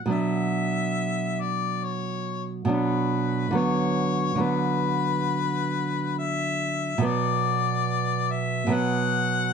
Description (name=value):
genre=romantic duo for harmonica and classical guitar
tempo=70 BPM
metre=4/4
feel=rubato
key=B minor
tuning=A4 = 438 Hz
part: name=nylon-string guitar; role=accompaniment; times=0.0-9.5 s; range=B2 to D4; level=-25 LUFS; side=right 4 dB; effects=none
part: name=warm harmonica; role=melody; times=0.1-9.5 s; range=B4 to F#5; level=-27 LUFS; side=left 9 dB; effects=slapback echo
room=light reverb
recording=dark, warm production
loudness=-23 LUFS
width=side -6 dB against mid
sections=0.0-9.5 A section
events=none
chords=0.1 Bm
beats=| 0.12 0.98 1.85 2.71 | 3.57 4.42 5.27 6.18 | 7.05 7.89 8.73